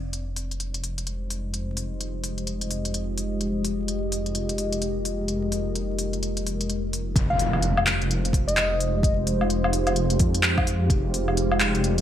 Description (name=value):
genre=future garage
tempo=128 BPM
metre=4/4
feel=swing 61% on 16ths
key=F dorian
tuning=A4 = 439 Hz
part: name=deep dark ambient pad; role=sustained chords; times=0.0-12.0 s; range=Ab3 to Eb5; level=-28 LUFS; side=equal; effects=chorus, built-in reverb, vintage 12-bit sampler grit, sidechain pumping
part: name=dark detuned saw bass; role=bass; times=0.0-12.0 s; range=F1 to F2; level=-28 LUFS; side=equal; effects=sidechain pumping
part: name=organic electronic drum kit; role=drums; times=0.1-12.0 s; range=handclaps, hi-hat, woodblock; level=-26 LUFS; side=left 1 dB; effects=none
part: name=electronic kick drum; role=drums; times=7.2-11.0 s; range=none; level=-23 LUFS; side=equal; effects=none
part: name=impact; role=sound effects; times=7.2-9.0 s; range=none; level=-31 LUFS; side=equal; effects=none
part: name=soft struck synth lead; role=melody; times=7.3-9.1 s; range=Eb5 to F5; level=-29 LUFS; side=left 2 dB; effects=chorus, ping-pong delay
room=moderate plate reverb, RT60 1.5 s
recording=bright 1980s-style digital production, vinyl crackle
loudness=-22 LUFS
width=side -10 dB against mid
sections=0.0-7.2 A section; 7.2-12.0 B section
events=impact 7.2-9.0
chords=0.0 Fm9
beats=0.13 0.60 1.06 | 1.53 2.00 2.47 2.94 | 3.41 3.88 4.35 4.82 | 5.28 5.75 6.22 6.69 | 7.16 7.63 8.10 8.56 | 9.03 9.50 9.97 10.44 | 10.91 11.38 11.85